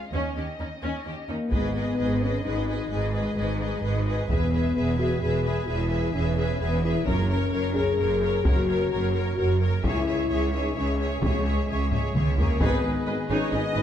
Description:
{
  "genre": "cinematic, epic orchestral film score",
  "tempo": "130 BPM",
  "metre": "3/4",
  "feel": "straight",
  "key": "G# minor",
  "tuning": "A4 = 440 Hz",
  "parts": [
    { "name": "warm studio violin section", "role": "melody", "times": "0.0-13.8 s", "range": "G#4 to E#5", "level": "-36 LUFS", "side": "left 2 dB", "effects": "none" },
    { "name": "clear symphonic violin section", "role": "second line", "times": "0.1-13.8 s", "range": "C#4 to D#5", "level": "-34 LUFS", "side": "left 2 dB", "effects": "none" },
    { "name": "bright symphonic viola section", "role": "accompaniment", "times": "0.1-13.8 s", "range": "C#4 to D#5", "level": "-34 LUFS", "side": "right 1 dB", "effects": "none" },
    { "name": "bright symphonic cello section", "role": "bass", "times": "0.1-13.8 s", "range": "C#2 to G#2", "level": "-30 LUFS", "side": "right 3 dB", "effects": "none" },
    { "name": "rich studio double bass section", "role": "bass", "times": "0.1-13.8 s", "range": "E1 to D#2", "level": "-29 LUFS", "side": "right 2 dB", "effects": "none" },
    { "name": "dark French horn section", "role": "sustained chords", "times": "1.3-13.8 s", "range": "G#3 to G#4", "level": "-28 LUFS", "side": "left 4 dB", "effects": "none" },
    { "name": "taiko ensemble", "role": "drums", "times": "1.5-13.0 s", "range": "none", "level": "-27 LUFS", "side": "equal", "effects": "none" },
    { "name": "dark trombone section", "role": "sustained chords", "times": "12.6-13.8 s", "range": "D#3 to B3", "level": "-36 LUFS", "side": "right 3 dB", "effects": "none" },
    { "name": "pipe organ, foundations", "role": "sustained chords", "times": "12.6-13.8 s", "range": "G#3 to D#5", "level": "-32 LUFS", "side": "left 2 dB", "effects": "none" },
    { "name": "warm tuba", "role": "bass", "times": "12.6-13.8 s", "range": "G#1", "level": "-35 LUFS", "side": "right 4 dB", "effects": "none" }
  ],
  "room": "wet recital hall reverb, RT60 1.4 s",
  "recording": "dark, warm production",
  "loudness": "-23 LUFS",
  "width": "side -10 dB against mid",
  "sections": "0.0-1.5 A section; 1.5-12.6 B section; 12.6-13.8 B section",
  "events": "build-up 0.0-1.5; drum fill 11.9-12.6; band accent 12.6-13.1",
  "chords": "0.1 D#7(no3); 1.5 G#m; 4.3 E; 7.1 F#; 9.8 C#m; 12.6 G#m"
}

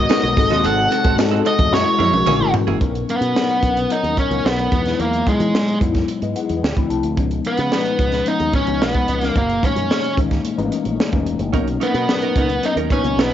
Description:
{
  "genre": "polished 1980s jazz-funk pop",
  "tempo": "110 BPM",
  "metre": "4/4",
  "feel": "straight",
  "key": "unclear",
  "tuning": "A4 = 440 Hz",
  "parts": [
    { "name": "octave-fuzz lead guitar", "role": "melody", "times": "0.0-13.3 s", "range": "G#3 to F#5", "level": "-19 LUFS", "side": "equal", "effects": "distortion, cassette tape" },
    { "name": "mellow tine electric piano", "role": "accompaniment", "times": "0.0-13.3 s", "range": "E3 to A#5", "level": "-22 LUFS", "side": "left 7 dB", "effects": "medium stereo tremolo, ensemble chorus, cassette tape" },
    { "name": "warm studio string section", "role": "sustained chords", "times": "0.0-2.8 s", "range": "B#2 to A4", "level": "-31 LUFS", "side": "right 2 dB", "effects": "cassette tape" },
    { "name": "fingered electric bass with an envelope filter", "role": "bass", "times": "0.0-13.3 s", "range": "E1 to E3", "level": "-24 LUFS", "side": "right 1 dB", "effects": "none" },
    { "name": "direct-recorded clean electric guitar", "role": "riff", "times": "0.1-2.8, 11.5-13.3 s", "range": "A#3 to B4", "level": "-25 LUFS", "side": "right 11 dB", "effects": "lush chorus, cassette tape" },
    { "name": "crisp fusion drum kit", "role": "drums", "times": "0.1-13.3 s", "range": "hi-hat, kick drum, snare drum, toms", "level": "-21 LUFS", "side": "right 1 dB", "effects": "cassette tape" },
    { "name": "tambourine", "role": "percussion", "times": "0.1-2.8 s", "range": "none", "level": "-40 LUFS", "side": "left 12 dB", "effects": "none" }
  ],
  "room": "light reverb, small room ambience",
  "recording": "home recording on cassette, nothing above 7.6 kHz",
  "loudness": "-16 LUFS",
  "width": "side -11 dB against mid",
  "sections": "0.0-2.8 A section; 2.8-13.3 B section",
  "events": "drum fill 1.7-2.8; tine electric piano fill 6.1-7.2",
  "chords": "0.4 G#7b9; 1.7 F#9; 2.8 Bmaj9; 4.7 Emaj7; 6.6 Dm9; 7.2 C#7; 9.4 F#13; 11.5 Bmaj9"
}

